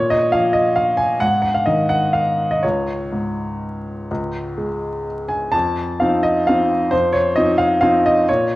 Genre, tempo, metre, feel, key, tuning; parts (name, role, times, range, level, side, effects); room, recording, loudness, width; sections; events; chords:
classical, piano waltz; 120-143 BPM; 3/4; rubato; A4 = 440 Hz
clear upright piano; solo; 0.0-8.6 s; Db2 to A5; -16 LUFS; equal
moderate scoring stage reverb, RT60 2.0 s; worn, warbling old tape, cassette tape, vinyl crackle, warbly pitch drift; -16 LUFS; side -17 dB against mid
0.0-5.5 A section; 5.5-8.6 B section
0.0 Bb5; 1.2 Ab5; 2.6 Db5; 5.5 F7